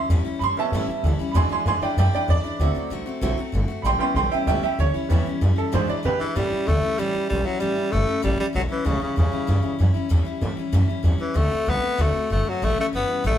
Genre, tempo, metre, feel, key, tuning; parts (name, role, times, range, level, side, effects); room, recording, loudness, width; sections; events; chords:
rockabilly; 192 BPM; 4/4; straight; A mixolydian; A4 = 439 Hz
bright upright piano; accompaniment; 0.0-6.3 s; F#3 to C6; -24 LUFS; right 4 dB
picked steel-string acoustic guitar; accompaniment; 0.0-13.4 s; E2 to F#4; -28 LUFS; left 3 dB
upright bass; bass; 0.1-13.4 s; G1 to B2; -22 LUFS; equal
raspy tenor saxophone; melody; 6.2-13.4 s; C#3 to B3; -24 LUFS; left 1 dB
moderate studio reverb, RT60 0.7 s; band playing live in one room; -20 LUFS; side -10 dB against mid
0.0-6.3 A section; 6.3-13.4 B section
upright piano solo 0.0-6.3
0.0 A7; 1.3 E7; 2.6 D7; 3.8 A7; 5.7 E7; 6.3 A7; 11.4 D7; 12.6 A7